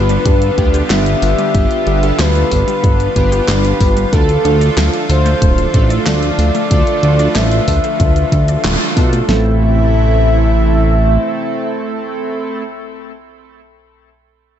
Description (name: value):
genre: synthwave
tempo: 93 BPM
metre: 4/4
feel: straight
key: A minor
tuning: A4 = 440 Hz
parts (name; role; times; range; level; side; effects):
- expressive synth lead; melody; 0.0-12.6 s; A4 to E5; -18 LUFS; equal; chorus, analog delay
- lush unison pad; sustained chords; 0.0-12.6 s; C3 to F4; -20 LUFS; right 1 dB; chorus, sidechain pumping
- chorused polysynth; stabs; 0.0-12.6 s; A3 to B4; -21 LUFS; right 1 dB; cassette tape, ping-pong delay
- fat analog bass; bass; 0.0-11.2 s; D1 to B2; -14 LUFS; equal; none
- wide unison pluck; arpeggios; 0.1-9.6 s; G3 to D5; -26 LUFS; left 3 dB; none
- pop drum kit; drums; 0.1-9.3 s; handclaps, hi-hat, shaker, snare drum; -21 LUFS; equal; none
- pop drum kit; drums; 0.3-9.4 s; kick drum, snare drum; -14 LUFS; equal; none
room: moderate lush hall reverb, RT60 2.0 s, digital ambience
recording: dreamy mix soaked in reverb, nothing above 8.0 kHz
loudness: -11 LUFS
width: side -10 dB against mid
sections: 0.0-9.3 A section; 9.3-11.9 B section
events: band accent 8.6-9.0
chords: 0.0 G7; 4.1 Dm; 9.3 Am